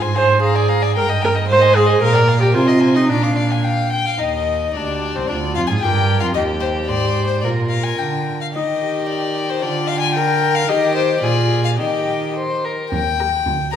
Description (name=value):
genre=quick classical-period movement for string quartet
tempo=111 BPM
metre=2/4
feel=rubato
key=Eb major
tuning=A4 = 440 Hz
part: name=rich violin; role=melody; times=0.0-13.8 s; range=C5 to D6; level=-22 LUFS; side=left 8 dB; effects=none
part: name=rich violin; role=second line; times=0.0-13.8 s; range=C4 to G5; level=-24 LUFS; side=left 2 dB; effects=none
part: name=warm cello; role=bass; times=0.0-13.8 s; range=C2 to Eb3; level=-20 LUFS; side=right 2 dB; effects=none
part: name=warm viola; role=accompaniment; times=0.2-13.8 s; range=D4 to C5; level=-20 LUFS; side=right 1 dB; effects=none
room=wet recital hall reverb, RT60 1.6 s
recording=recorded in a church or concert hall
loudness=-15 LUFS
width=side -9 dB against mid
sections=0.0-4.2 A section; 4.2-12.9 B section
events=none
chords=0.4 Bb7/Ab; 1.0 Eb/G; 1.5 Fm7/Ab; 2.0 Bb; 2.5 Ab/C; 3.1 Bb; 4.2 Eb; 5.3 Bb/D; 6.4 Eb; 6.9 Ab; 7.4 Bb; 8.6 Eb; 9.6 Bb/D; 10.7 Eb; 11.2 Bb7; 11.8 Eb